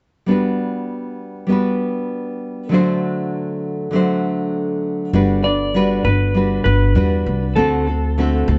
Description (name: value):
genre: acoustic pop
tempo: 99 BPM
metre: 4/4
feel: straight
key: G major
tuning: A4 = 437 Hz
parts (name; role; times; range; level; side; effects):
- nylon-string guitar; accompaniment; 0.3-8.6 s; D3 to C5; -21 LUFS; equal; none
- upright bass; bass; 5.1-8.6 s; G1 to E2; -20 LUFS; equal; none
- clean lap steel guitar; melody; 5.4-8.6 s; A4 to D5; -24 LUFS; equal; none
room: light reverb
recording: dark, warm production, nothing above 7.8 kHz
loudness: -19 LUFS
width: mono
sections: 0.3-5.1 A section; 5.1-8.6 B section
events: none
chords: 0.3 Gmaj7; 2.7 D7; 5.1 Gmaj7; 7.6 D7